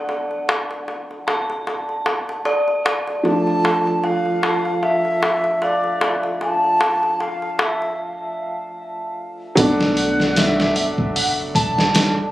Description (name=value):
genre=trip hop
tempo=76 BPM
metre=4/4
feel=swing 56% on 16ths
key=B minor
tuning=A4 = 441 Hz
part: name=felt-muted upright piano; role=accompaniment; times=0.0-12.3 s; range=F3 to D4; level=-23 LUFS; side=right 1 dB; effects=harmonic tremolo, vintage 12-bit sampler grit
part: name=dark detuned synth bell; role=arpeggios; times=0.0-9.6 s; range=A4 to A5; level=-25 LUFS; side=equal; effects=chorus, phaser, low-pass filter, tape echo
part: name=darbuka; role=percussion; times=0.1-8.0 s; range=none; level=-24 LUFS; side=left 1 dB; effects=none
part: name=baroque flute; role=melody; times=3.3-12.3 s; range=D5 to A5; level=-22 LUFS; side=equal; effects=vintage 12-bit sampler grit, tape echo
part: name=warm sub bass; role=bass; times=9.6-12.1 s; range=F#1 to B1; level=-30 LUFS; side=equal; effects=tube saturation
part: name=trip hop sampler-style drum kit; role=drums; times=9.6-12.2 s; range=hi-hat, kick drum, snare drum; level=-19 LUFS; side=equal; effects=none
room=little or no reverb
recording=recorded on a phone in the room, club reverb, compression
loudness=-17 LUFS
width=side -15 dB against mid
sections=0.0-9.6 A section; 9.6-12.3 B section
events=break 8.0-9.6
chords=0.0 Bm7; 3.3 Dmadd9; 9.6 Bm7